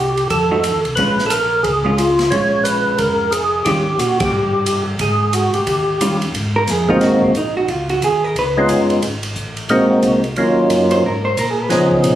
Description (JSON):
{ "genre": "soul jazz organ trio", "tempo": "179 BPM", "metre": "4/4", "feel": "swing 62% on 8ths", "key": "unclear", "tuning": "A4 = 440 Hz", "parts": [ { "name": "percussive tonewheel organ", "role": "melody", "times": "0.0-12.2 s", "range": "F3 to Db5", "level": "-15 LUFS", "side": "equal", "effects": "slow rotary speaker, overdrive, plate reverb" }, { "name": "mellow tonewheel organ", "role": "bass", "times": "0.0-12.2 s", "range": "F1 to Db3", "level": "-24 LUFS", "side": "equal", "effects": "slow rotary speaker" }, { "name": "swinging big-band drum kit", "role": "drums", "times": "0.2-12.1 s", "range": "hi-hat, kick drum, ride cymbal, snare drum", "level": "-25 LUFS", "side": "equal", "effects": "none" }, { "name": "vintage hollow-body jazz guitar", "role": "accompaniment", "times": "0.5-3.9, 6.0-11.9 s", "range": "Eb3 to C5", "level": "-19 LUFS", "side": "right 2 dB", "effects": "none" } ], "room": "moderate club reverb, RT60 0.5 s", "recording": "recorded on a phone in the room, club reverb", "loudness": "-14 LUFS", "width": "side -12 dB against mid", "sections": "0.0-6.3 A section; 6.3-12.2 B section", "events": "band accent 4.2; hollow-body jazz guitar solo 6.3-12.2", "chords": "0.3 F7b9; 1.0 Bbm7; 3.7 Eb9; 5.0 Gbsus2/Ab; 5.7 Eb9; 6.3 Ab9; 7.7 Db9; 9.0 Ab9; 10.4 Ebm7; 11.0 Absus2", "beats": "0.30 0.64 | 0.97 1.31 1.64 1.98 | 2.31 2.65 2.98 3.32 | 3.66 3.99 4.33 4.66 | 5.00 5.33 5.67 6.00 | 6.34 6.67 7.01 7.35 | 7.68 8.02 8.35 8.69 | 9.02 9.36 9.69 10.03 | 10.36 10.70 11.03 11.37 | 11.70 12.04" }